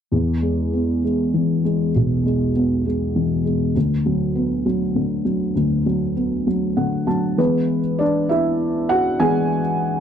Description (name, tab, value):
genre	pop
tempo	66 BPM (dotted quarters)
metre	6/8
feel	straight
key	unclear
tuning	A4 = 440 Hz
part	felt-muted upright piano	solo	0.1-10.0 s	B1 to A5	-18 LUFS	equal	none
room	light reverb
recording	dry, close 1970s-style studio recording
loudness	-18 LUFS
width	side -8 dB against mid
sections	0.1-7.4 A section; 7.4-10.0 B section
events	felt piano fill 6.5-7.4; felt piano solo 7.4-10.0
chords	0.1 E; 3.8 Bm/D; 7.4 Eadd9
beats	| 0.11 1.02 | 1.94 2.85 | 3.75 4.66 | 5.56 6.47 | 7.39 8.30 | 9.21